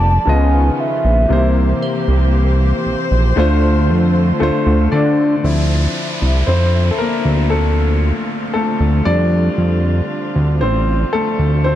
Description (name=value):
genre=contemporary R&B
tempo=58 BPM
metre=4/4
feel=straight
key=D minor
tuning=A4 = 440 Hz
part: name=hollow clarinet-like synth lead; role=melody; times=0.0-1.8 s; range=E5 to A5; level=-20 LUFS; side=right 1 dB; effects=chorus, digital delay
part: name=warm concert grand piano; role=accompaniment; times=0.0-11.8 s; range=C3 to D#5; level=-18 LUFS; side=left 3 dB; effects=none
part: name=warm chamber string section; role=sustained chords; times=0.0-11.8 s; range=D3 to D5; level=-24 LUFS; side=right 1 dB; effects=none
part: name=fat analog bass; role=bass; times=0.0-11.8 s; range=F1 to D3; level=-14 LUFS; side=equal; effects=none
part: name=glassy synth bell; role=texture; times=0.0-3.9 s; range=A4 to C6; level=-36 LUFS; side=right 3 dB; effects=none
part: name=downlifter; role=sound effects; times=5.4-11.8 s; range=none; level=-28 LUFS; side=right 1 dB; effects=none
room=little or no reverb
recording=dark, warm production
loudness=-13 LUFS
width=side -12 dB against mid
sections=0.0-5.4 A section; 5.4-11.8 B section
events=grand piano solo 5.4-11.8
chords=0.3 C#9; 1.3 C7; 3.4 Dm7; 5.4 Dm9; 9.1 F6